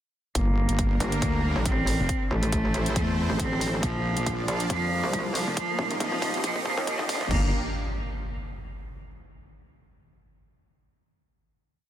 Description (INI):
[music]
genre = heavy wobble dubstep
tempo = 138 BPM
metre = 4/4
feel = swing 55% on 16ths, half-time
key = G minor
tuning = A4 = 440 Hz
[part]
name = bright cello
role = melody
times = 0.4-7.5 s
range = F3 to C4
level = -29 LUFS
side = right 1 dB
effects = low-pass filter, tape echo
[part]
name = supersaw pad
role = sustained chords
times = 0.6-7.5 s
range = G3 to Eb5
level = -34 LUFS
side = right 2 dB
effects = sidechain pumping
[part]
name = wobble bass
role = bass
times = 0.4-7.5 s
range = Eb1 to F2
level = -27 LUFS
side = equal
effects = chorus, overdrive
[part]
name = dubstep drum kit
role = drums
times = 0.4-7.4 s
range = crash cymbal, hi-hat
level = -34 LUFS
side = equal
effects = overdrive
[part]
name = electronic kick drum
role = drums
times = 0.4-7.4 s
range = none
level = -30 LUFS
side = equal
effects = overdrive
[part]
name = riser and impact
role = sound effects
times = 4.1-9.0 s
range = none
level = -37 LUFS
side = equal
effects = none
[part]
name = metallic wobble bass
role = bass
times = 1.0-7.2 s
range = Eb1 to Eb2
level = -28 LUFS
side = equal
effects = chorus, overdrive
[sound]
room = light reverb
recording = dense, heavily limited modern master, high-pass filter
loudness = -24 LUFS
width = side -11 dB against mid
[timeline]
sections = 0.4-7.3 build; 7.3-9.0 final chord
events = build-up 0.4-7.3; filter sweep on cello 0.4-7.3; filter sweep 0.4-7.3; drum fill 3.8-7.3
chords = 0.4 Gm; 2.1 Am; 3.8 Bb; 5.6 Eb; 7.3 Gm